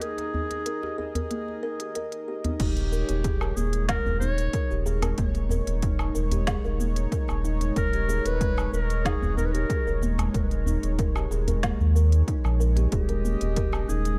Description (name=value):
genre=organic downtempo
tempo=93 BPM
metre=4/4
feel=straight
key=unclear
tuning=A4 = 439 Hz
part: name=mellow clarinet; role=melody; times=0.0-14.2 s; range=G4 to Db5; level=-35 LUFS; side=equal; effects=digital delay
part: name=warm analog pad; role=sustained chords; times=0.0-14.2 s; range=Ab3 to Eb5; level=-38 LUFS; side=equal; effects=chorus, sidechain pumping
part: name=kalimba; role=arpeggios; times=0.0-14.0 s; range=Ab3 to Bb4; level=-36 LUFS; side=equal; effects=tape echo
part: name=organic electronic drum kit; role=drums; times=0.0-14.2 s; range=crash cymbal, hi-hat, shaker, snare drum, woodblock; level=-37 LUFS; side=equal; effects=overdrive
part: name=djembe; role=percussion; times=0.2-14.0 s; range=none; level=-36 LUFS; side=equal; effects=none
part: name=warm sub bass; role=bass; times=2.6-14.2 s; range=Eb1 to Eb2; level=-28 LUFS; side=equal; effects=sidechain pumping
part: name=electronic kick drum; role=drums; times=2.6-13.7 s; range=none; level=-31 LUFS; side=equal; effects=overdrive
room=light reverb, digital ambience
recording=dark, warm production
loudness=-26 LUFS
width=mono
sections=0.0-2.6 A section; 2.6-14.2 B section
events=none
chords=0.0 Ebsus4; 2.6 Eb7sus4; 12.9 Dbsus2/Eb